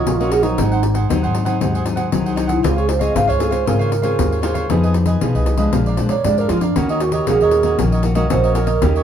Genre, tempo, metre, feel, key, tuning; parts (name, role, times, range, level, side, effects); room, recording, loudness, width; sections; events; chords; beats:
samba and choro; 116 BPM; 4/4; straight; A4 = 441 Hz
mellow hollow alto flute; second line; 0.0-9.0 s; Db4 to F5; -19 LUFS; right 5 dB
cavaquinho; accompaniment; 0.0-9.0 s; Eb4 to Gb5; -25 LUFS; right 3 dB
nylon-string guitar; accompaniment; 0.0-9.0 s; F2 to Ab4; -22 LUFS; left 2 dB
upright bass; bass; 0.1-9.0 s; Ab1 to Cb3; -19 LUFS; equal
pandeiro; percussion; 0.1-9.0 s; -24 LUFS; left 4 dB
wet studio ambience, RT60 0.4 s; band playing live in one room; -15 LUFS; side -9 dB against mid
0.0-9.0 A section
alto flute solo 0.0-9.0
0.0 Ebm7; 0.6 Ab7; 2.6 Dbmaj7; 4.7 Fm7b5; 5.7 Bb7; 6.8 Ebm7
0.07 | 0.59 1.10 1.61 2.13 | 2.64 3.16 3.67 4.19 | 4.70 5.22 5.73 6.25 | 6.76 7.28 7.79 8.31 | 8.82